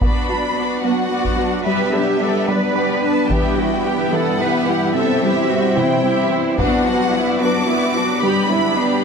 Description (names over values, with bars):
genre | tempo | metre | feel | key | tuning
cinematic, hybrid orchestral and electronic film score | 73 BPM (dotted quarters) | 6/8 | straight | B phrygian | A4 = 441 Hz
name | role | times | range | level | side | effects
rich symphonic violin section | melody | 0.0-9.0 s | D5 to D6 | -24 LUFS | left 2 dB | none
clear symphonic violin section | second line | 0.0-9.0 s | D4 to E5 | -26 LUFS | left 1 dB | none
rich symphonic viola section | accompaniment | 0.0-9.0 s | E3 to E4 | -25 LUFS | right 2 dB | none
granular cloud pad | sustained chords | 0.0-9.0 s | F#3 to B4 | -23 LUFS | equal | built-in reverb
mellow French horn section | sustained chords | 0.0-9.0 s | E3 to C4 | -23 LUFS | left 4 dB | none
resonant blip pluck | arpeggios | 0.0-8.7 s | C3 to B4 | -26 LUFS | right 1 dB | phaser, digital delay
rich symphonic cello section | bass | 0.0-9.0 s | D4 to B4 | -22 LUFS | right 3 dB | none
taiko ensemble | drums | 0.0-7.6 s | none | -21 LUFS | equal | none
room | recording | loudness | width
wet scoring stage reverb, RT60 1.6 s | dark, warm production | -15 LUFS | side -6 dB against mid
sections
0.0-9.0 A section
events
none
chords
0.0 Bm/F#; 1.7 G; 3.3 Em; 4.9 C; 6.6 Bm/F#; 8.2 G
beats
| 0.01 0.84 | 1.66 2.48 | 3.30 4.12 | 4.95 5.77 | 6.59 7.41 | 8.23